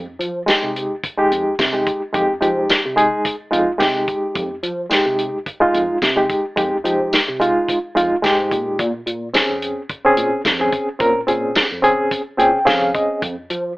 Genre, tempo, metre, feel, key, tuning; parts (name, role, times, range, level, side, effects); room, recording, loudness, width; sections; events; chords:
straight-eighth soul blues; 108 BPM; 4/4; swing 55% on 16ths; F minor; A4 = 440 Hz
tine electric piano; bass; 0.0-13.7 s; F2 to F3; -25 LUFS; equal; phaser
warm soul drum kit; drums; 0.2-13.6 s; hi-hat, kick drum, snare drum, tambourine; -19 LUFS; equal
bright reed electric piano; accompaniment; 0.5-13.2 s; Ab3 to G5; -16 LUFS; equal; fast tremolo
light reverb; telephone sound; -16 LUFS; side -21 dB against mid
0.0-13.8 A section
reed electric piano fill 12.1-13.2
0.0 Fm7; 8.8 Bbm7; 13.2 N.C.